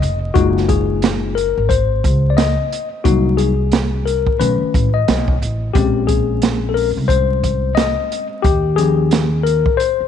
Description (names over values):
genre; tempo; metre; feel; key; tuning
hip hop, jazz-hop; 89 BPM; 4/4; swing 61% on 16ths; unclear; A4 = 440 Hz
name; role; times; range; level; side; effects
mellow tine electric piano; accompaniment; 0.0-10.1 s; D#3 to Eb5; -18 LUFS; left 10 dB; medium stereo tremolo
upright bass; bass; 0.0-10.0 s; F1 to Eb2; -18 LUFS; right 1 dB; none
open jazz drum kit; drums; 0.0-10.0 s; hi-hat, kick drum, snare drum; -19 LUFS; right 2 dB; none
room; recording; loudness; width
light reverb, small room ambience; 1960s-style stereo, vinyl crackle, nothing above 10.9 kHz; -14 LUFS; side -9 dB against mid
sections
0.0-10.1 A section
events
tine electric piano solo 0.0-10.1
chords
0.4 Gbmaj13; 3.1 Cm7b5; 4.4 B9; 5.8 Bbm9; 8.4 Eb9